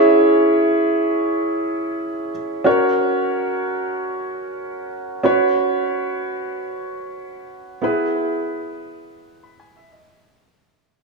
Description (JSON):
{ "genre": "pop", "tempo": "free time", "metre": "none", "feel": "none", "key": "unclear", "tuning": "A4 = 441 Hz", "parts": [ { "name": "warm grand piano", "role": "solo", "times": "0.0-10.4 s", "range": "B3 to B5", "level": "-18 LUFS", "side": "right 1 dB", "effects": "digital delay" } ], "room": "moderate plate reverb, RT60 2.5 s", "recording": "small room ambience", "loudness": "-18 LUFS", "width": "side -3 dB against mid", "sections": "0.0-5.2 A section; 5.2-10.4 B section", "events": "fade-out 5.2-10.4; grand piano fill 9.1-10.4", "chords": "0.0 C#m; 2.7 F#; 5.2 Bsus2; 7.8 E", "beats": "free time" }